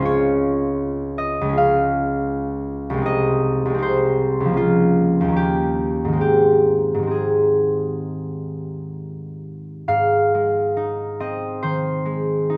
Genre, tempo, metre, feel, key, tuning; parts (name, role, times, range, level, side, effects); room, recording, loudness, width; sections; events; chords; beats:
classical, solo harp piece; 57-83 BPM; 4/4; rubato; Ab major; A4 = 440 Hz
concert harp; solo; 0.0-12.6 s; C2 to F5; -20 LUFS; equal
little or no reverb; close, detailed microphones; -20 LUFS; mono
0.0-9.9 A section; 9.9-12.6 B section
0.1 Db; 3.1 Ab/C; 4.6 Bbm/Db; 5.4 Eb7; 6.2 Ab
| 0.07 0.82 1.58 2.33 | 3.06 3.81 4.56 5.36 | 6.22 7.11 7.99 8.88 | 9.87 10.78 11.63 12.51